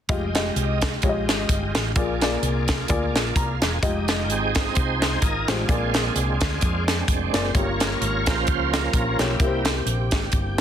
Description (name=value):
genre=uptempo gospel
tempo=129 BPM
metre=4/4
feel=swing 56% on 8ths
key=F minor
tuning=A4 = 439 Hz
part: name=warm upright piano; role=accompaniment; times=0.1-10.1 s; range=G2 to Bb5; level=-27 LUFS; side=left 3 dB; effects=none
part: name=bright tonewheel organ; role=sustained chords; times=0.1-10.6 s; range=F3 to Ab5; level=-27 LUFS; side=right 4 dB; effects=slow rotary speaker, overdrive, chorus vibrato
part: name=mellow French horn section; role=sustained chords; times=0.1-10.6 s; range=Ab3 to Ab4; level=-38 LUFS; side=left 1 dB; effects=none
part: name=hollow-body short-scale fingered electric bass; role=bass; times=0.1-10.6 s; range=E1 to F2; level=-27 LUFS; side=equal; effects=none
part: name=tight funk drum kit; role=drums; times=0.1-10.6 s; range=hi-hat, kick drum, snare drum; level=-23 LUFS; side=equal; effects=none
room=light reverb, small room reverb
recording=dense, heavily limited modern master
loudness=-20 LUFS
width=side -9 dB against mid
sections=0.1-3.8 A section; 3.8-10.6 B section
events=tonewheel organ fill 2.9-3.8; upright piano fill 3.1-3.8; tonewheel organ solo 3.8-10.6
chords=0.1 Fm9; 2.0 Bb7; 3.8 Fm9; 5.7 Bb7; 7.5 Gm7b5; 9.4 C7